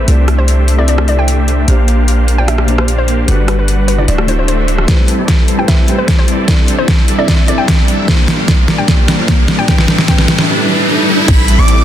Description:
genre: future bass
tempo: 150 BPM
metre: 4/4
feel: half-time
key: A dorian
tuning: A4 = 440 Hz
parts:
  - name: felt-muted upright piano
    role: accompaniment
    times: 0.0-11.3 s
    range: A2 to E5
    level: -21 LUFS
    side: left 2 dB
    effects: sidechain pumping, digital delay
  - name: dense compressed supersaw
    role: riff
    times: 0.0-11.8 s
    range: G3 to F#5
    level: -17 LUFS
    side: equal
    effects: sidechain pumping, low-pass filter
  - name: warm 808-style bass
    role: bass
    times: 0.0-4.9, 11.3-11.8 s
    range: D1 to C2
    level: -11 LUFS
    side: equal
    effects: sidechain pumping
  - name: dubstep drum kit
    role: drums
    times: 0.1-11.8 s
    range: crash cymbal, hi-hat, rim click, snare drum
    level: -15 LUFS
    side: equal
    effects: overdrive
  - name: hollow square pluck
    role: melody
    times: 0.4-10.2 s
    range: B4 to G5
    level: -21 LUFS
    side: left 2 dB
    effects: chorus, sidechain pumping, ping-pong delay
  - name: swell and riser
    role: sound effects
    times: 4.3-11.3 s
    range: none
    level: -20 LUFS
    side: equal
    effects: none
  - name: electronic kick drum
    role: drums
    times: 4.9-11.4 s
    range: none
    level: -12 LUFS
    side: equal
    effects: overdrive
  - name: airy dreamy lead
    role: arpeggios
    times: 11.3-11.8 s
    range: B5 to D6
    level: -16 LUFS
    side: right 1 dB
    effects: chorus, sidechain pumping
room: light reverb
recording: dense, heavily limited modern master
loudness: -9 LUFS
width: side -11 dB against mid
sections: 0.0-4.9 A section; 4.9-11.3 B section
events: swell 4.3-4.9; build-up 4.9-11.3; drum fill 4.9-10.5; filter sweep on supersaw synth 4.9-11.3; riser 7.9-11.3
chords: 0.1 C69; 1.7 Bb69; 3.3 Gmaj7; 4.1 D9; 4.9 Am9; 6.5 C69; 8.1 Bb69; 9.7 G; 11.3 Am9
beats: | 0.08 0.48 0.88 1.28 | 1.68 2.08 2.48 2.88 | 3.28 3.68 4.08 4.48 | 4.88 5.28 5.68 6.08 | 6.48 6.88 7.28 7.68 | 8.08 8.48 8.88 9.28 | 9.68 10.08 10.48 10.88 | 11.28 11.68

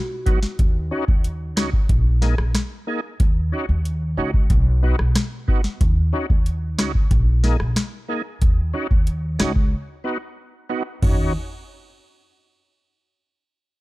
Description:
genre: dancehall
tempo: 92 BPM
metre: 4/4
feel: straight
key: Eb minor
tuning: A4 = 445 Hz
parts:
  - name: overdriven tonewheel organ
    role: accompaniment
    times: 0.3-11.3 s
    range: F#3 to Ab4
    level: -28 LUFS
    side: right 1 dB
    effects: chorus vibrato, slow rotary speaker
  - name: booming analog drum machine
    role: drums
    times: 0.3-11.2 s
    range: crash cymbal, hi-hat, kick drum, rim click, snare drum, toms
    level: -19 LUFS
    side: equal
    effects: none
  - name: upright bass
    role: bass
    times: 0.6-11.3 s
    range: Bb1 to Eb2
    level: -21 LUFS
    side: equal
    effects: none
room: digital ambience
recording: dark, warm production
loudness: -18 LUFS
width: side -19 dB against mid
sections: 0.6-11.0 A section; 11.0-13.6 B section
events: break 9.7-11.0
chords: 0.0 B; 0.6 Ebm7; 1.9 Bb7sus4; 3.2 Ebm7; 4.5 B; 5.8 Ebm7; 7.1 Bb7sus4; 8.4 Ebm7; 9.7 B; 11.0 Ebm7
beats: | 0.59 1.24 1.90 2.55 | 3.20 3.85 4.50 5.16 | 5.81 6.46 7.11 7.76 | 8.42 9.07 9.72 10.37 | 11.03

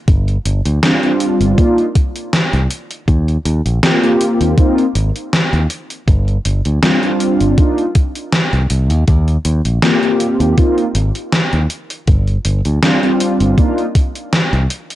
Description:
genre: vaporwave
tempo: 80 BPM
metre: 4/4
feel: swing 54% on 16ths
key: C minor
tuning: A4 = 440 Hz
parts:
  - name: modern bright fingered electric bass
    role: bass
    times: 0.1-14.7 s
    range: G1 to Eb2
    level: -14 LUFS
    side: equal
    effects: tube saturation
  - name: electronic kick drum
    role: drums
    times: 0.1-14.1 s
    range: none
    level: -12 LUFS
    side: equal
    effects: overdrive
  - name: gated 80s digital drum machine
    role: drums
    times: 0.1-15.0 s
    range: hi-hat, snare drum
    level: -17 LUFS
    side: equal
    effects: gated reverb, gated reverb snare, overdrive
  - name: mellow synth brass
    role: accompaniment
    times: 0.8-13.9 s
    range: G3 to G4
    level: -15 LUFS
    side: equal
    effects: analog chorus, cassette tape, analog delay
room: little or no reverb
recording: dry, gritty hardware recording, cassette tape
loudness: -12 LUFS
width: side -14 dB against mid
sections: 0.0-15.0 A section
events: none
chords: 0.1 G7sus4; 1.6 Cm11; 3.1 Eb69; 4.6 Ab69; 6.1 G7sus4; 7.6 Cm11; 9.1 Eb69; 10.6 Ab69; 12.1 G7sus4; 13.6 Cm11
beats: | 0.08 0.83 1.58 2.33 | 3.08 3.83 4.58 5.33 | 6.08 6.83 7.58 8.33 | 9.08 9.83 10.58 11.33 | 12.08 12.83 13.58 14.33

